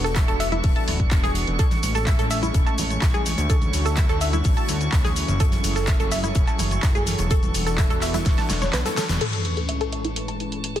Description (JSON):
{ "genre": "progressive house", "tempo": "126 BPM", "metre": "4/4", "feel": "straight", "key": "A major", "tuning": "A4 = 443 Hz", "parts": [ { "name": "lush unison pad", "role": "sustained chords", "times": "0.0-10.8 s", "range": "A2 to B4", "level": "-30 LUFS", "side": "left 1 dB", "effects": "chorus, sidechain pumping" }, { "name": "tight sequenced synth", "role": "arpeggios", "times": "0.0-10.8 s", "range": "E4 to A5", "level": "-28 LUFS", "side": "equal", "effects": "chorus, sidechain pumping, ping-pong delay" }, { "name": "fat analog bass", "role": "bass", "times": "0.0-9.2 s", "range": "D1 to D2", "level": "-26 LUFS", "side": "equal", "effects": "sidechain pumping" }, { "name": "modern studio drum kit", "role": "drums", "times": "0.0-9.2 s", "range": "hi-hat, snare drum", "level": "-37 LUFS", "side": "left 3 dB", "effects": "sidechain pumping on hats, high-pass filter on hats, high-pass filter on snare, high-pass filter on room" }, { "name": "pop drum kit", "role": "drums", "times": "0.0-10.8 s", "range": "cabasa, crash cymbal, handclaps, hi-hat, snare drum", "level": "-29 LUFS", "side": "equal", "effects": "sidechain pumping on hats, sidechain pumping on perc, sidechain pumping on cymbals" }, { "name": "drifting glass-harmonics texture", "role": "texture", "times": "0.0-10.8 s", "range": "A5 to C#6", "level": "-34 LUFS", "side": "right 2 dB", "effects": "chorus, built-in reverb, sidechain pumping" }, { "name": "electronic kick drum", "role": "drums", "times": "0.2-8.4 s", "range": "none", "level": "-21 LUFS", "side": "equal", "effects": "none" }, { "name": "congas and woodblock", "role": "percussion", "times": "0.2-9.2 s", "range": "none", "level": "-34 LUFS", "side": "right 4 dB", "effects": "sidechain pumping on perc" }, { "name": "sub drop", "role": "sound effects", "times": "9.2-10.8 s", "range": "none", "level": "-29 LUFS", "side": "equal", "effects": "none" } ], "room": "light reverb", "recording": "dense, heavily limited modern master", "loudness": "-19 LUFS", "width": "side -11 dB against mid", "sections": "0.0-9.2 A section; 9.2-10.8 B section", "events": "drum fill 8.3-9.2; kick drops out 8.7-9.2; band accent 9.1; impact 9.2-10.8; filter sweep on synth arpeggio sound 9.2-10.8; filter sweep on analog synth pad 9.2-10.8", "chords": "0.0 E7sus4; 1.6 Amaj7; 3.5 Dmaj7; 5.4 F#m7; 7.3 E7sus4; 9.2 Amaj7" }